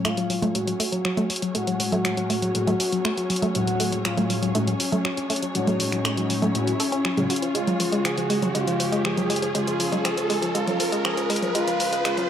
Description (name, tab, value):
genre	melodic techno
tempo	120 BPM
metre	4/4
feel	straight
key	F# harmonic minor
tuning	A4 = 438 Hz
part	expressive portamento lead	melody	0.0-12.3 s	C#4 to G#4	-28 LUFS	left 1 dB	lush chorus, tape echo
part	dark chamber string section	sustained chords	0.0-12.3 s	F#2 to C#5	-34 LUFS	equal	vintage 12-bit sampler grit
part	woody wave-folded pluck	arpeggios	0.0-12.3 s	C#3 to A4	-28 LUFS	left 1 dB	chorus, analog delay
part	analog synth brass	stabs	0.0-12.3 s	A2 to F#4	-28 LUFS	left 1 dB	chorus, analog delay
part	punchy analog drum machine	drums	0.0-12.3 s	congas, finger snaps, hi-hat	-27 LUFS	right 2 dB	none
part	riser	sound effects	2.2-12.3 s	none	-31 LUFS	right 1 dB	none
room	light reverb, digital ambience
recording	dry, gritty hardware recording, high-pass filter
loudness	-21 LUFS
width	side -9 dB against mid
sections	0.0-12.3 A section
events	build-up 0.0-12.3; filter sweep on synth pluck 0.0-12.3; filter sweep on analog polysynth 0.0-12.3; riser 2.2-12.3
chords	0.0 F#madd9; 7.5 C#/F#; 11.6 B5/F#